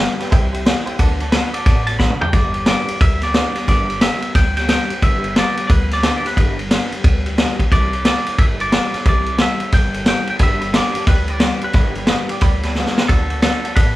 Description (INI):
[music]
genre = rockabilly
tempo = 178 BPM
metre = 4/4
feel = swing 64% on 8ths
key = G major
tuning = A4 = 437 Hz
[part]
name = twangy electric guitar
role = melody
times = 0.0-14.0 s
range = A4 to B5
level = -22 LUFS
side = right 1 dB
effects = none
[part]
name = clear upright piano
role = accompaniment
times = 0.0-2.3, 10.4-13.9 s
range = B4 to D6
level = -29 LUFS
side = right 4 dB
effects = none
[part]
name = picked steel-string acoustic guitar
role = accompaniment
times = 0.0-14.0 s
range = G2 to A4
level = -28 LUFS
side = left 3 dB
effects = none
[part]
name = upright bass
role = bass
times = 0.0-14.0 s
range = G1 to D2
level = -24 LUFS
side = equal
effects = none
[part]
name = vintage drum kit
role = drums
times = 0.2-13.9 s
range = kick drum, ride cymbal, snare drum, toms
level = -15 LUFS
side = equal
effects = none
[sound]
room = light reverb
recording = band playing live in one room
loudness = -14 LUFS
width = side -16 dB against mid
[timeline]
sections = 0.0-2.3 A section; 2.3-14.0 B section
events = clean electric guitar solo 0.0-2.3; drum fill 2.0-2.3, 12.8-13.1; upright piano fill 12.4-13.1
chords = 0.3 C6; 1.0 D6; 2.3 G6; 7.7 C6; 10.4 G6; 13.1 D6